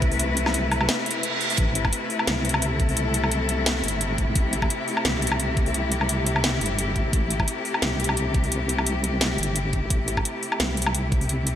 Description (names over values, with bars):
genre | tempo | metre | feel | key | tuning
half-time drum and bass | 173 BPM | 4/4 | swing 54% on 16ths, half-time | A minor | A4 = 441 Hz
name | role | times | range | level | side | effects
clear studio cello section | sustained chords | 0.0-11.6 s | C3 to B4 | -26 LUFS | left 3 dB | sidechain pumping
deep soft wobble bass | bass | 0.0-11.6 s | G1 to C2 | -26 LUFS | equal | chorus
drum and bass drum kit | drums | 0.0-11.5 s | hi-hat, snare drum, woodblock | -26 LUFS | equal | none
electronic kick drum | drums | 0.0-11.2 s | none | -24 LUFS | equal | none
reverse cymbal | sound effects | 1.0-1.6 s | none | -29 LUFS | right 7 dB | none
room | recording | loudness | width
moderate lush hall reverb, RT60 1.9 s | bright 1980s-style digital production | -21 LUFS | side -10 dB against mid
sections
0.0-11.6 A section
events
reverse cymbal 1.0-1.6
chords
0.0 Am